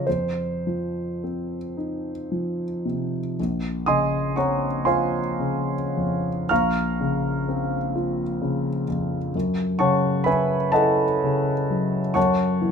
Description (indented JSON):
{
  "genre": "classical, impressionist solo piano",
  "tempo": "33-44 BPM (dotted quarters)",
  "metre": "6/8",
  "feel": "rubato",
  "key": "Bb minor",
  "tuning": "A4 = 439 Hz",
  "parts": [
    { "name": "warm concert grand piano", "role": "solo", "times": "0.0-12.7 s", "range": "Bb1 to F6", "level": "-21 LUFS", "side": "equal", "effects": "none" }
  ],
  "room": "light reverb",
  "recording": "minimal, uncompressed stereo recording",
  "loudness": "-21 LUFS",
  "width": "side -6 dB against mid",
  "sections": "0.0-3.4 A section; 3.4-12.7 A section",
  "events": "none",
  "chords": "0.1 F5; 3.4 Bbm9; 6.5 Dbmaj7/Bb; 9.3 Gbm9; 12.2 A/Gb",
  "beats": "| 0.06 1.76 | 3.38 4.88 | 6.50 7.95 | 9.34 10.74 | 12.16"
}